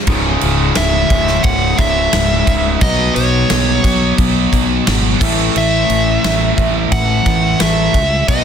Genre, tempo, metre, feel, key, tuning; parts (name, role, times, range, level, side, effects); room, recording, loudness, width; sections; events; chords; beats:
hard rock; 88 BPM; 4/4; straight; C# minor; A4 = 440 Hz
crunchy overdriven guitar; riff; 0.1-8.4 s; C#2 to B3; -20 LUFS; left 11 dB
distorted electric guitar; riff; 0.1-8.4 s; C#2 to B3; -23 LUFS; left 1 dB; distortion
tight distorted guitar; riff; 0.1-8.4 s; C#2 to B3; -21 LUFS; right 11 dB; distortion
fuzz fingered electric bass; bass; 0.1-8.4 s; C#1 to C#2; -18 LUFS; equal; overdrive
big rock drum kit; drums; 0.1-8.4 s; crash cymbal, kick drum, snare drum; -17 LUFS; right 1 dB
dark smooth lead guitar; melody; 0.8-8.4 s; C#5 to F#5; -17 LUFS; equal; overdrive, analog delay
moderate large studio reverb, RT60 0.9 s, small room ambience; dense, heavily limited modern master; -11 LUFS; side -8 dB against mid
0.1-8.4 A section
0.1 C#m; 2.8 B5; 5.2 A5
| 0.09 0.77 1.46 2.14 | 2.82 3.51 4.19 4.88 | 5.56 6.24 6.93 7.61 | 8.30